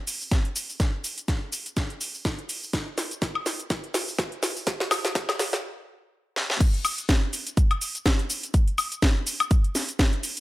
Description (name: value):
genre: house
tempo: 124 BPM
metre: 4/4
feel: swing 56% on 16ths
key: none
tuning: none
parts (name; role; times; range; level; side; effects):
- house drum kit; drums; 0.1-10.4 s; cabasa, crash cymbal, hi-hat, snare drum, woodblock; -26 LUFS; equal; high-pass filter on hats, high-pass filter on snare, high-pass filter on perc, high-pass filter on cymbals, high-pass filter on room
- electronic kick drum; drums; 0.3-10.1 s; none; -22 LUFS; equal; none
room: light reverb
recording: high-pass filter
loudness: -23 LUFS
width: side -17 dB against mid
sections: 0.0-6.6 A section; 6.6-10.4 B section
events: build-up 0.0-6.6; drum fill 0.0-5.6, 6.4; filter sweep 0.0-6.6; stop 5.6-6.6; drop 6.6-10.4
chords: none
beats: 0.32 | 0.80 1.28 1.77 2.25 | 2.73 3.22 3.70 4.19 | 4.67 5.15 5.64 6.12 | 6.61 7.09 7.57 8.06 | 8.54 9.03 9.51 9.99